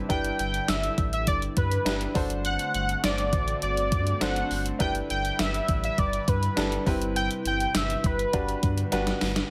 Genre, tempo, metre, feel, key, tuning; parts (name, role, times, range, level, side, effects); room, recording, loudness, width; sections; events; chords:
1980s-style pop; 102 BPM; 4/4; straight; G major; A4 = 436 Hz
clear baby grand piano; accompaniment; 0.0-9.5 s; C4 to C5; -36 LUFS; equal
phased analog pad; sustained chords; 0.0-9.5 s; C3 to F#5; -38 LUFS; equal; phaser, chorus
octave-doubled lead; melody; 0.1-8.9 s; B4 to G5; -31 LUFS; equal; chorus
sub bass with octave; bass; 0.1-9.4 s; G1 to G2; -33 LUFS; equal
gated 80s digital drum machine; drums; 0.1-9.5 s; hi-hat, kick drum, snare drum, tambourine; -30 LUFS; equal; gated reverb, gated reverb snare, overdrive
light reverb, digital ambience; -26 LUFS; mono
0.0-9.5 A section
drum fill 8.9-9.5
0.1 G6; 2.2 D7/G; 4.8 G6; 6.9 Cmaj7/G; 8.3 Gmaj7